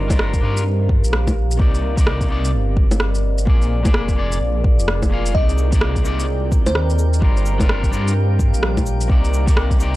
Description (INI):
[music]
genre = future garage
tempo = 128 BPM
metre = 4/4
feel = swing 62% on 16ths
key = C minor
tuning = A4 = 441 Hz
[part]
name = electric guitar at the edge of break-up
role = accompaniment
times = 0.0-10.0 s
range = Bb2 to F5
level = -27 LUFS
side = left 3 dB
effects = sidechain pumping, analog delay
[part]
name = deep dark ambient pad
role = sustained chords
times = 0.0-10.0 s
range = G3 to F5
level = -27 LUFS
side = equal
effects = chorus, built-in reverb, sidechain pumping
[part]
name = dark detuned saw bass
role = bass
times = 0.0-10.0 s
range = F1 to G2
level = -19 LUFS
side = equal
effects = sidechain pumping
[part]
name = electronic bongos, shaker, rim click and cabasa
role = drums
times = 0.1-9.9 s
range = none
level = -24 LUFS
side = equal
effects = small room ambience
[part]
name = electronic kick drum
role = drums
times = 0.1-9.8 s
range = none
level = -17 LUFS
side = equal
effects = small room ambience
[part]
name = bell-like FM electric piano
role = melody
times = 5.3-7.0 s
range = C5 to Eb5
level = -29 LUFS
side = equal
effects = chorus, phaser, analog delay
[part]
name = drifting glass-harmonics texture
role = texture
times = 6.0-10.0 s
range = G5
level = -36 LUFS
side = right 4 dB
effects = chorus, built-in reverb
[sound]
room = little or no reverb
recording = dry, gritty hardware recording, cassette tape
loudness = -15 LUFS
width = side -17 dB against mid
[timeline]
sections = 0.0-10.0 A section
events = none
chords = 0.0 Gm7; 1.6 Cm9; 3.5 Bb7; 5.3 Cm9; 7.2 Gm7; 9.1 Cm9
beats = 0.19 0.66 1.13 | 1.60 2.07 2.54 3.00 | 3.47 3.94 4.41 4.88 | 5.35 5.82 6.29 6.75 | 7.22 7.69 8.16 8.63 | 9.10 9.57